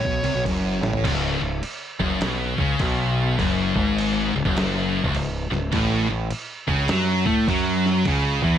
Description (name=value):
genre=stoner and doom metal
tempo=102 BPM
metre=4/4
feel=swing 63% on 8ths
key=C# minor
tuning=A4 = 442 Hz
part: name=thick fuzz guitar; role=riff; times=0.0-8.6 s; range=C#2 to A3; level=-25 LUFS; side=left 6 dB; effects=distortion
part: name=thick fuzz guitar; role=riff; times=0.0-1.0, 5.7-8.6 s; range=F#2 to A3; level=-26 LUFS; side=right 9 dB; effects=distortion
part: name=growling fingered electric bass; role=bass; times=0.0-8.6 s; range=C#1 to A2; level=-27 LUFS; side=right 1 dB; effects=overdrive
part: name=lo-fi sampler-style drum kit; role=drums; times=0.1-8.5 s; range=crash cymbal, kick drum, snare drum, toms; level=-28 LUFS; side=right 1 dB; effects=none
part: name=scooped high-gain guitar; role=riff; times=1.0-8.6 s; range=C#2 to A3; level=-26 LUFS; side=right 1 dB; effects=distortion
room=digital ambience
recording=none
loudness=-20 LUFS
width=side -10 dB against mid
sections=0.0-1.0 A section; 1.0-8.6 B section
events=drum fill 0.7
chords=0.0 F#5; 1.0 C#5; 5.7 A5